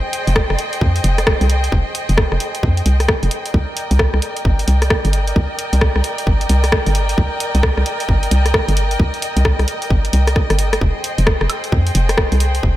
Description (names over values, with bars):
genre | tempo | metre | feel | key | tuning
UK garage, two-step garage | 132 BPM | 4/4 | swing 63% on 16ths | F dorian | A4 = 442 Hz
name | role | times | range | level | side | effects
rich studio violin section | sustained chords | 0.0-12.8 s | Ab4 to G5 | -23 LUFS | equal | sidechain pumping
punchy analog drum machine | drums | 0.1-12.6 s | hi-hat, rim click, woodblock | -21 LUFS | equal | overdrive
hollow knocking FM bass | bass | 0.3-12.7 s | F1 to F2 | -16 LUFS | equal | none
electronic kick drum | drums | 0.4-12.7 s | none | -20 LUFS | equal | none
room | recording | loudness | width
light reverb | none | -14 LUFS | side -14 dB against mid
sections
0.0-12.8 A section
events
drum fill 10.4-10.8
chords
0.0 Fm9; 3.5 Cm9; 10.8 Fm9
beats
0.36 0.81 1.27 | 1.72 2.18 2.63 3.09 | 3.54 4.00 4.45 4.91 | 5.36 5.81 6.27 6.72 | 7.18 7.63 8.09 8.54 | 9.00 9.45 9.90 10.36 | 10.81 11.27 11.72 12.18 | 12.63